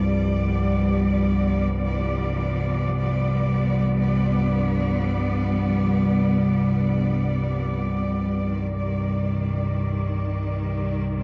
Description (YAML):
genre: dark ambient drone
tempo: free time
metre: none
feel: none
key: unclear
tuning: A4 = 441 Hz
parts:
  - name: bright studio cello section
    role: sustained chords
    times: 0.0-11.2 s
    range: Eb3 to D5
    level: -29 LUFS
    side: equal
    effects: none
  - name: analog drone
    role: drone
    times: 0.0-11.2 s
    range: C2 to G2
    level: -24 LUFS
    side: equal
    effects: chorus
room: wet cathedral reverb, RT60 4.7 s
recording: worn, warbling old tape, cassette tape, warbly pitch drift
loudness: -23 LUFS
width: mono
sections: 0.0-11.2 A section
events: none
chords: 0.0 G; 8.4 Cm